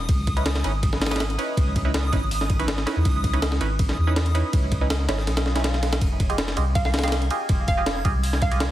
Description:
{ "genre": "drum and bass, jungle", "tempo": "162 BPM", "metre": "4/4", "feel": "straight", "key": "unclear", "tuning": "A4 = 436 Hz", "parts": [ { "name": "soft dub sub bass", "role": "bass", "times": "0.0-8.7 s", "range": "F1 to Fb2", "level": "-24 LUFS", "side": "equal", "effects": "none" }, { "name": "backwards swelling texture", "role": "texture", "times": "0.0-8.7 s", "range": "Eb6 to Ab6", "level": "-34 LUFS", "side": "right 1 dB", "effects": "built-in reverb" }, { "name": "breakbeat sampler-style drum kit", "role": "drums", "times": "0.1-8.7 s", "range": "hi-hat, kick drum, ride cymbal, snare drum", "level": "-24 LUFS", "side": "equal", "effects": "studio reverb" }, { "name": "band-passed chord stab", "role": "stabs", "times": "0.4-8.6 s", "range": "Db4 to Eb5", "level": "-29 LUFS", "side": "right 3 dB", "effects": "phaser, wide subtle chorus, dub echo" }, { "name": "swell", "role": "sound effects", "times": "5.4-6.0 s", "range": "none", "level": "-35 LUFS", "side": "left 2 dB", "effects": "none" }, { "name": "hollow square pluck", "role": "melody", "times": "6.8-8.6 s", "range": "F5", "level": "-28 LUFS", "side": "right 2 dB", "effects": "chorus, cassette tape, dub echo" } ], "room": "light reverb", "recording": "heavily compressed radio sound", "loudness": "-20 LUFS", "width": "side -14 dB against mid", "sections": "0.0-8.7 A section", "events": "swell 5.4-6.0", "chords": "0.1 Dbm9; 6.0 Fm9", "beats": "| 0.09 0.46 0.83 1.20 | 1.57 1.94 2.31 2.68 | 3.05 3.42 3.79 4.16 | 4.53 4.90 5.27 5.64 | 6.01 6.38 6.76 7.13 | 7.50 7.87 8.24 8.61" }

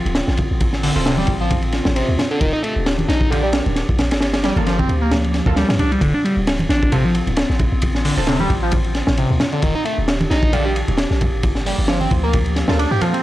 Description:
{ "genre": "breakbeat, breaks", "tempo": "133 BPM", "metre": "4/4", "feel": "swing 55% on 16ths", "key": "D phrygian", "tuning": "A4 = 439 Hz", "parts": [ { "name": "warbly tape-like pad", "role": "sustained chords", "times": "0.0-13.2 s", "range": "D3 to G4", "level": "-27 LUFS", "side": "equal", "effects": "chorus, built-in reverb, vintage 12-bit sampler grit, sidechain pumping" }, { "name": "warm 808-style bass", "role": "bass", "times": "0.1-13.0 s", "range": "D1 to G2", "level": "-21 LUFS", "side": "equal", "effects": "none" }, { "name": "crunchy breakbeat drum kit", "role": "drums", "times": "0.1-13.2 s", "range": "hi-hat, kick drum, ride cymbal, snare drum", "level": "-20 LUFS", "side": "equal", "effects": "none" }, { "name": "congas", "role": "percussion", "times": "0.1-13.1 s", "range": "none", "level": "-27 LUFS", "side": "right 2 dB", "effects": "none" }, { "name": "overdriven synth lead", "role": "riff", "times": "0.8-13.2 s", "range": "C3 to G4", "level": "-21 LUFS", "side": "equal", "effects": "distortion, phaser, analog delay" }, { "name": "orchestra-hit-like synth stab", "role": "stabs", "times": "1.0-13.2 s", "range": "Bb3 to A4", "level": "-27 LUFS", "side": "right 2 dB", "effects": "built-in reverb, analog delay" } ], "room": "little or no reverb", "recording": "dry, gritty hardware recording, cassette tape", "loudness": "-16 LUFS", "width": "side -16 dB against mid", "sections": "0.0-13.2 A section", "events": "none", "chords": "0.0 Dm7; 2.4 Ebmaj7; 4.2 Gm7; 6.0 Dm7; 9.6 Ebmaj7; 11.4 Gm7", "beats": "0.15 | 0.61 1.06 1.51 1.96 | 2.41 2.86 3.31 3.76 | 4.21 4.67 5.12 5.57 | 6.02 6.47 6.92 7.37 | 7.82 8.28 8.73 9.18 | 9.63 10.08 10.53 10.98 | 11.43 11.88 12.34 12.79" }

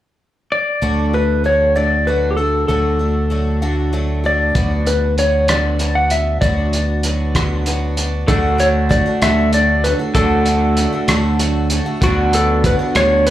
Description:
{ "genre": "folk rock and heartland rock", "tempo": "64 BPM (dotted quarters)", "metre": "6/8", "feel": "straight", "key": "D major", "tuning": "A4 = 440 Hz", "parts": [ { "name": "clean lap steel guitar", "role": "melody", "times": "0.5-13.3 s", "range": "F#4 to F#5", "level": "-18 LUFS", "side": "left 1 dB", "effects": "slapback echo" }, { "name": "picked twelve-string acoustic guitar", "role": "accompaniment", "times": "0.8-13.3 s", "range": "D3 to F#4", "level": "-24 LUFS", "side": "left 1 dB", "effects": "slapback echo" }, { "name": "fingered electric bass", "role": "bass", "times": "0.8-13.3 s", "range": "D2", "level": "-18 LUFS", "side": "equal", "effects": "none" }, { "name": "cloth-damped thuddy drum kit", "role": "drums", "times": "4.5-13.3 s", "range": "hi-hat, kick drum, rim click", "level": "-20 LUFS", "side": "equal", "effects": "none" }, { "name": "electric guitar through a small old amp", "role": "riff", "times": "8.3-13.3 s", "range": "D3 to F#4", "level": "-20 LUFS", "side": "right 3 dB", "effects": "spring reverb, slapback echo" } ], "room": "light reverb, small room ambience", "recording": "live gig heard through the venue's PA, club reverb", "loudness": "-14 LUFS", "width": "side -13 dB against mid", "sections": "0.8-8.3 A section; 8.3-13.3 B section", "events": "none", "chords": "0.0 N.C.; 0.8 D; 4.6 Bm/D; 8.3 D; 12.0 Bm/D", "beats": "| 0.82 1.75 | 2.69 3.62 | 4.55 5.49 | 6.42 7.35 | 8.29 9.22 | 10.15 11.09 | 12.02 12.96" }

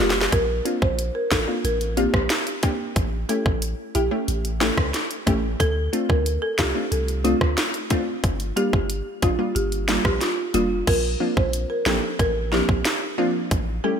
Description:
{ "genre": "dancehall", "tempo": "91 BPM", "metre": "4/4", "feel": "straight", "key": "unclear", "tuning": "A4 = 444 Hz", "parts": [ { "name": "folk marimba with medium mallets", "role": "melody", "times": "0.0-14.0 s", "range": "F4 to C5", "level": "-26 LUFS", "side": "right 1 dB", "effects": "ping-pong delay" }, { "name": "glassy wavetable pluck", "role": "accompaniment", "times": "0.0-14.0 s", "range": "F3 to G4", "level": "-26 LUFS", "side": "left 1 dB", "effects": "chorus" }, { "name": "punchy sub bass", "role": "bass", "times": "0.0-13.8 s", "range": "F1 to D2", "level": "-26 LUFS", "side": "equal", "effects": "none" }, { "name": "island pop drum kit", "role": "drums", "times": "0.1-13.7 s", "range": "crash cymbal, hi-hat, kick drum, rim click, snare drum", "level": "-24 LUFS", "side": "equal", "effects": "none" } ], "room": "light reverb", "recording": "bright 1980s-style digital production", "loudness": "-20 LUFS", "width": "side -7 dB against mid", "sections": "0.3-10.9 A section; 10.9-14.0 B section", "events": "drum fill 0.0-0.3", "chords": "0.3 Bbadd9; 3.0 A7; 5.6 Dm7; 8.2 Gm7; 10.9 Bbadd9", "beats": "| 0.33 0.98 1.64 2.30 | 2.96 3.62 4.28 4.94 | 5.60 6.26 6.92 7.58 | 8.24 8.90 9.56 10.21 | 10.87 11.53 12.19 12.85 | 13.51" }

